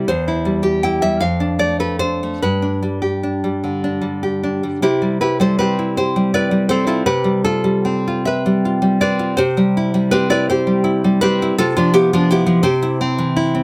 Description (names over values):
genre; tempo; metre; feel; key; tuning
romantic piece for solo classical guitar; 48-57 BPM (dotted quarters); 6/8; rubato; C major; A4 = 436 Hz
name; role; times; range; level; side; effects
nylon-string guitar; solo; 0.0-13.6 s; E2 to G5; -17 LUFS; equal; none
room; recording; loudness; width
light reverb; close, detailed microphones; -17 LUFS; mono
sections
0.0-4.8 A section; 4.8-13.6 B section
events
none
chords
0.1 C/E; 1.2 Dm/F; 2.4 G; 4.8 C; 11.6 Fmaj9#11/C; 12.6 C